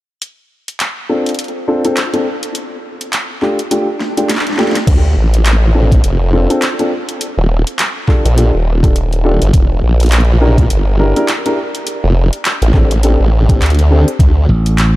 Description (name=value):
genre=glitch hop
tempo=103 BPM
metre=4/4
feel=swing 58% on 16ths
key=D minor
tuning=A4 = 441 Hz
part: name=drum and bass drum kit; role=drums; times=0.2-14.9 s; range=crash cymbal, handclaps, hi-hat, snare drum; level=-20 LUFS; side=equal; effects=overdrive, small room ambience
part: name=dark baby grand piano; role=stabs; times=1.1-14.1 s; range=A3 to Bb4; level=-17 LUFS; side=left 1 dB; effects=sidechain pumping, low-pass filter, tape echo
part: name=swell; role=sound effects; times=3.9-4.9 s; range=none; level=-25 LUFS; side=right 2 dB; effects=none
part: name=formant-sweep wobble bass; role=bass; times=4.9-14.5 s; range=Eb1 to D2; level=-11 LUFS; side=equal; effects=chorus
part: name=electronic kick drum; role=drums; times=4.9-14.3 s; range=none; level=-12 LUFS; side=equal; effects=overdrive, small room ambience
part: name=slap bass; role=bass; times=14.5-15.0 s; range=A1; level=-10 LUFS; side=equal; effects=none
room=light reverb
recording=none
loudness=-11 LUFS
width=side -17 dB against mid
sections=0.2-4.9 A section; 4.9-15.0 B section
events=swell 3.9-4.9; drum fill 4.0-4.9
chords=0.2 Dm7; 2.5 Dmadd11/A; 4.9 Dm7; 7.2 Ebmaj9#11; 9.5 Em7b5; 11.9 F6 (rootless); 14.2 D5